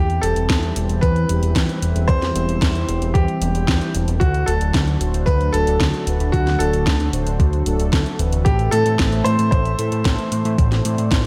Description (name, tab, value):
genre	italo disco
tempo	113 BPM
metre	4/4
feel	straight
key	unclear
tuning	A4 = 440 Hz
part	clear grand piano	melody	0.0-11.3 s	F#4 to C5	-26 LUFS	equal	tape echo
part	warm analog pad	sustained chords	0.0-11.3 s	D3 to E5	-29 LUFS	equal	chorus
part	fat analog bass	bass	0.0-11.3 s	D1 to A2	-22 LUFS	equal	none
part	house drum kit	drums	0.1-11.2 s	hi-hat, snare drum	-28 LUFS	equal	overdrive, studio reverb, gated reverb
part	mellow synth brass	stabs	0.2-11.3 s	E3 to C5	-30 LUFS	equal	chorus, vintage 12-bit sampler grit
part	electronic kick drum	drums	0.5-11.2 s	none	-21 LUFS	equal	overdrive, studio reverb
room	light reverb, digital ambience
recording	none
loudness	-19 LUFS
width	mono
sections	0.0-11.3 A section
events	none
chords	0.0 C/E; 4.2 D; 8.5 Am